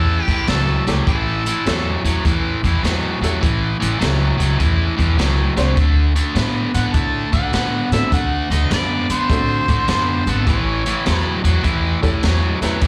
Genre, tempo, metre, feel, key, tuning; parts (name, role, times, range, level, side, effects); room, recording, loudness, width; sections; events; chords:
electric blues shuffle; 102 BPM; 4/4; swing 66% on 8ths; A mixolydian; A4 = 439 Hz
mellow harmonica; melody; 0.0-2.0, 6.7-11.4 s; G4 to A5; -26 LUFS; equal; overdrive, slapback echo
warm upright piano; accompaniment; 0.0-12.8 s; A3 to C5; -28 LUFS; equal
biting overdriven guitar; riff; 0.0-12.9 s; A2 to B3; -23 LUFS; equal
upright bass; bass; 0.0-12.9 s; G#1 to A2; -22 LUFS; equal
crunchy breakbeat drum kit; drums; 0.3-12.9 s; hi-hat, kick drum, snare drum; -25 LUFS; equal
little or no reverb; live gig heard through the venue's PA, club reverb; -18 LUFS; mono
0.0-12.9 A section
0.0 A7; 5.8 D7; 10.5 A7